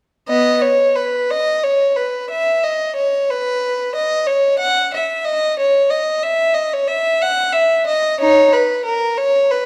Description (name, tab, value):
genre	classical, baroque-style suite movement for unaccompanied violin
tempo	61 BPM (dotted quarters)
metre	12/8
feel	rubato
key	unclear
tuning	A4 = 440 Hz
part	rich violin	solo	0.3-9.7 s	B3 to F#5	-17 LUFS	equal	none
room	wet recital hall reverb, RT60 1.4 s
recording	dark, warm production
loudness	-17 LUFS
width	mono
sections	0.3-9.7 A section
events	none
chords	none